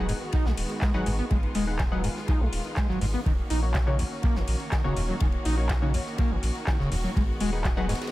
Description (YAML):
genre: acid house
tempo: 123 BPM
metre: 4/4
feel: straight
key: Eb minor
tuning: A4 = 440 Hz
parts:
  - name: clear symphonic string section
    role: sustained chords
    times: 0.0-8.1 s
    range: Eb3 to Gb4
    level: -35 LUFS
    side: right 1 dB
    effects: sidechain pumping
  - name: overdriven acid bass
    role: riff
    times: 0.0-7.9 s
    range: Eb2 to Eb4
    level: -31 LUFS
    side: equal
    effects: wide subtle chorus, sidechain pumping, analog delay
  - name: filtered dub chord stab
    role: stabs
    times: 0.0-8.0 s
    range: Bb3 to Gb5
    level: -37 LUFS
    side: left 3 dB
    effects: chorus, dub echo
  - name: warm sub bass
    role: bass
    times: 0.0-7.9 s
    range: Eb1 to Cb2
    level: -29 LUFS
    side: equal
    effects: sidechain pumping
  - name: big rock drum kit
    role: drums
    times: 0.1-8.1 s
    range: hi-hat, ride cymbal, snare drum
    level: -43 LUFS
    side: left 1 dB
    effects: sidechain pumping on cymbals, high-pass filter on cymbals, sidechain pumping on hats, high-pass filter on hats, high-pass filter on snare, high-pass filter on room
  - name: electro analog drum machine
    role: drums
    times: 0.1-8.0 s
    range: handclaps, hi-hat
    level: -36 LUFS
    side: left 1 dB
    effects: dub echo
  - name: electronic kick drum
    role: drums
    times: 0.3-7.7 s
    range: none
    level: -26 LUFS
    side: equal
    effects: none
room: little or no reverb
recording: echo-heavy mix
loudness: -24 LUFS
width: side -17 dB against mid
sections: 0.0-8.1 A section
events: none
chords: 0.0 Abm7; 3.3 Ebm7; 7.2 Abm7